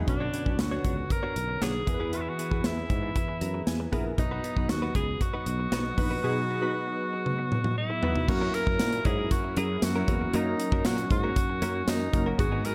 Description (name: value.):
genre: 1980s-style pop.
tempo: 117 BPM.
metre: 4/4.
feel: straight.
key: unclear.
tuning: A4 = 440 Hz.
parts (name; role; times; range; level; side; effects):
glassy digital keys; accompaniment; 0.0-12.7 s; G#2 to A#5; -37 LUFS; equal; chorus.
brassy analog pad; sustained chords; 0.0-12.7 s; D3 to D#5; -39 LUFS; equal; chorus.
direct-recorded clean electric guitar; riff; 0.0-12.7 s; F#3 to C#5; -40 LUFS; equal; subtle chorus.
edgy alto saxophone; melody; 0.1-12.7 s; D4 to A#4; -35 LUFS; equal; digital delay.
sustaining fretless electric bass; bass; 0.1-12.6 s; F#1 to A#2; -35 LUFS; equal; none.
modern studio drum kit; drums; 0.1-12.7 s; crash cymbal, hi-hat, kick drum, snare drum, tambourine, toms; -32 LUFS; equal; gated reverb.
room: light reverb, studio reverb.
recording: none.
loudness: -28 LUFS.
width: mono.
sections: 0.1-8.3 A section; 8.3-12.7 B section.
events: synth keys fill 3.2-4.2; drum fill 7.3-8.3.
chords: 0.1 Bmadd9; 1.9 E; 4.2 B; 8.3 F#7; 10.3 D#m7/F#.